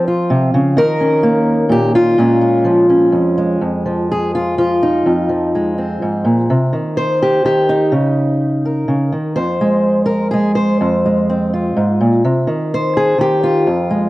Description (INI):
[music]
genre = folk, solo fingerstyle acoustic guitar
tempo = 126 BPM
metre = 3/4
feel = straight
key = F minor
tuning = A4 = 440 Hz
[part]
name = fingerpicked old ladder-braced acoustic guitar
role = solo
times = 0.0-14.1 s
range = F2 to C5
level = -12 LUFS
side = equal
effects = cassette tape
[sound]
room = light reverb, studio reverb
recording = home recording on cassette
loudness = -12 LUFS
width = side -18 dB against mid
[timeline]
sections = 0.0-3.6 A section; 3.6-14.1 B section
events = none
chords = 0.0 Csus4; 0.8 Eb5; 2.2 Bbm7; 3.6 Fm; 6.5 Cm; 7.9 Bbm/Db; 9.4 Fm; 12.2 Cm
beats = 0.30 | 0.77 1.24 1.71 | 2.18 2.65 3.13 | 3.61 4.10 4.58 | 5.05 5.53 6.00 | 6.48 6.96 7.43 | 7.91 8.40 8.88 | 9.36 9.85 10.33 | 10.81 11.29 11.77 | 12.24 12.71 13.19 | 13.67